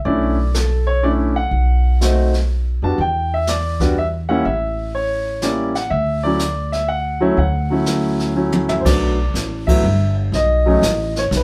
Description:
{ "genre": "jazz piano trio", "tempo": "123 BPM", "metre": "3/4", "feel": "swing 67% on 8ths", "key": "D major", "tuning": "A4 = 439 Hz", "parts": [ { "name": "warm baby grand piano", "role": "melody", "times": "0.1-11.4 s", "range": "F#3 to A5", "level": "-21 LUFS", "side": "equal", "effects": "none" }, { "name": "upright bass", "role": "bass", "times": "0.1-11.4 s", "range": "G1 to F2", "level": "-22 LUFS", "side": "equal", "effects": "none" }, { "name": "jazz brush drum kit", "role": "drums", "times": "0.1-11.4 s", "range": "brushed snare drum, crash cymbal, hi-hat, kick drum, snare drum, toms", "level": "-25 LUFS", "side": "equal", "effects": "none" } ], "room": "moderate studio reverb, RT60 0.7 s", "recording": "band playing live in one room", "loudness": "-18 LUFS", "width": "mono", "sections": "0.0-8.9 A section; 8.9-11.4 B section", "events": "drum fill 8.4-8.9; band accent 9.6", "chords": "0.1 Bm11; 1.5 B7(no3); 3.0 Em9; 4.5 A7b9; 5.9 Dmaj9; 8.9 Gmaj9; 10.3 B7", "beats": "| 0.06 0.55 1.03 | 1.52 2.01 2.50 | 2.98 3.47 3.96 | 4.45 4.94 5.43 | 5.92 6.41 6.90 | 7.39 7.88 8.37 | 8.86 9.35 9.84 | 10.33 10.82 11.32" }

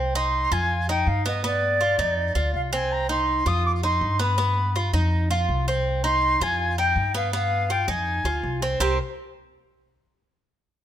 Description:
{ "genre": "latin, Cuban son and guajira", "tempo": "163 BPM", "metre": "4/4", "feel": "straight", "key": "C minor", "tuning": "A4 = 440 Hz", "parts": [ { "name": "Cuban tres", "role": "arpeggios", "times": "0.0-9.0 s", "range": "Cb4 to Bb4", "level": "-27 LUFS", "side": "right 2 dB", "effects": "none" }, { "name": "upright bass", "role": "bass", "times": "0.0-9.0 s", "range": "C2 to G2", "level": "-25 LUFS", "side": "equal", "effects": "none" }, { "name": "silver concert flute", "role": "melody", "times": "0.2-9.0 s", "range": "D5 to Eb6", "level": "-24 LUFS", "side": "left 1 dB", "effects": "none" } ], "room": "light reverb", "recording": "close, detailed microphones", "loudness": "-21 LUFS", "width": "side -10 dB against mid", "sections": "0.0-8.8 A section; 8.8-10.3 B section", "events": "none", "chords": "0.0 Cm; 0.7 F7(b5, no3); 2.2 F5; 2.9 Cm; 3.6 G7; 5.1 F5; 6.6 Fm9b5; 8.1 Fm7; 8.8 C5", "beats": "0.33 0.70 1.07 | 1.44 1.81 2.17 2.54 | 2.91 3.28 3.65 4.02 | 4.38 4.75 5.12 5.49 | 5.86 6.22 6.59 6.96 | 7.33 7.70 8.07 8.44 | 8.80" }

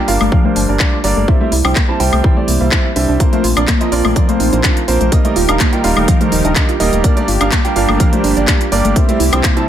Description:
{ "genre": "progressive house", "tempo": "125 BPM", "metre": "4/4", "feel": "straight", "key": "unclear", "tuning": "A4 = 439 Hz", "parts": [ { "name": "soft round pluck", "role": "arpeggios", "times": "0.0-9.6 s", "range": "E3 to F4", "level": "-18 LUFS", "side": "right 1 dB", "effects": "chorus, sidechain pumping, dub echo" }, { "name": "warm baby grand piano", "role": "stabs", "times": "0.0-9.7 s", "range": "F3 to A5", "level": "-18 LUFS", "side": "right 2 dB", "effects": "sidechain pumping, low-pass filter, dub echo" }, { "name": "round analog bass", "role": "bass", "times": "0.1-9.4 s", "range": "Eb1 to C2", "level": "-17 LUFS", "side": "equal", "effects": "sidechain pumping" }, { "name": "house drum kit", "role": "drums", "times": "0.1-9.7 s", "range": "handclaps, hi-hat, woodblock", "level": "-19 LUFS", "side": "left 1 dB", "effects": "none" }, { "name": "electronic kick drum", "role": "drums", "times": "0.3-9.5 s", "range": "none", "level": "-14 LUFS", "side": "equal", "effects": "none" }, { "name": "warm analog pad", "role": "sustained chords", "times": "3.2-9.7 s", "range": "C3 to Bb4", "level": "-22 LUFS", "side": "equal", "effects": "chorus, sidechain pumping" } ], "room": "light reverb", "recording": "none", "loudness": "-11 LUFS", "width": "side -10 dB against mid", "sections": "0.0-9.7 A section", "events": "none", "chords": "0.0 Gm; 1.3 C; 3.2 Bbsus2; 5.1 Eb; 7.0 Gm; 9.0 C", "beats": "0.32 0.80 | 1.28 1.76 2.24 2.72 | 3.20 3.68 4.16 4.64 | 5.12 5.60 6.08 6.56 | 7.04 7.52 8.00 8.48 | 8.96 9.44" }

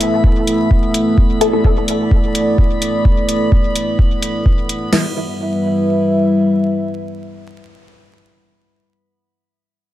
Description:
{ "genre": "dub techno", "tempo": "128 BPM", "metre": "4/4", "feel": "straight", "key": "E minor", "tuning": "A4 = 439 Hz", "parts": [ { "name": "dark analog pad", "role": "sustained chords", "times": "0.0-8.1 s", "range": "G3 to E5", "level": "-17 LUFS", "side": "equal", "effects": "chorus, sidechain pumping" }, { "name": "electronic hi-hat", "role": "drums", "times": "0.0-4.8 s", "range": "none", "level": "-24 LUFS", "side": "left 1 dB", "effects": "none" }, { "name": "drifting glass-harmonics texture", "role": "texture", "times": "0.0-4.9 s", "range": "B3 to B5", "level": "-27 LUFS", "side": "equal", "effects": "chorus, built-in reverb, sidechain pumping" }, { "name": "booming analog drum machine", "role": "drums", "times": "0.2-5.0 s", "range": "crash cymbal, kick drum, snare drum", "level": "-14 LUFS", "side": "equal", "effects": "overdrive" }, { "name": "filtered dub chord stab", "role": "stabs", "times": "1.4-1.6, 4.9-8.1 s", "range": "E3 to A4", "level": "-20 LUFS", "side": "left 3 dB", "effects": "phaser, sidechain pumping, dub echo" } ], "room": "light reverb, digital ambience", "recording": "vinyl crackle", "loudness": "-13 LUFS", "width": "side -14 dB against mid", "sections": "0.0-4.9 A section; 4.9-8.7 B section", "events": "none", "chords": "0.0 A5; 4.9 Em", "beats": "0.24 0.71 | 1.18 1.65 2.11 2.58 | 3.05 3.52 3.99 4.46 | 4.93 5.39 5.86 6.33 | 6.80 7.27 7.74" }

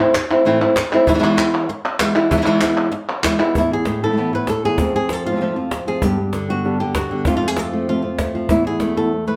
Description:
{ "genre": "flamenco", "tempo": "194 BPM", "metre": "4/4", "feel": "straight", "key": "unclear", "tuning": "A4 = 440 Hz", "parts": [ { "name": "flamenco guitar", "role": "melody", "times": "0.0-9.4 s", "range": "E2 to B4", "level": "-20 LUFS", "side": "equal", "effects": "none" }, { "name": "cajon", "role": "percussion", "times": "0.1-9.4 s", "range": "none", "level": "-27 LUFS", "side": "equal", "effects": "none" }, { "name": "palmas hand claps", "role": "percussion", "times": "0.1-3.5 s", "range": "none", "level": "-25 LUFS", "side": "equal", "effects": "none" }, { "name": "flamenco guitar", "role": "stabs", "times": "3.5-9.2 s", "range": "E2 to G4", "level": "-24 LUFS", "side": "equal", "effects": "none" } ], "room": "wet studio reverb, RT60 0.6 s", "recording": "heard from further back in the room", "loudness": "-18 LUFS", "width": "mono", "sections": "0.0-3.6 A section; 3.6-9.4 B section", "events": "none", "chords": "0.0 Am; 1.1 E; 3.6 Esus4; 4.8 F; 6.0 G; 7.3 F; 8.5 Esus4", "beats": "0.14 0.46 0.77 | 1.07 1.38 1.69 2.00 | 2.31 2.62 2.93 3.24 | 3.55 3.86 4.17 4.48 | 4.79 5.10 5.41 5.72 | 6.03 6.34 6.65 6.96 | 7.26 7.57 7.88 8.19 | 8.50 8.81 9.12" }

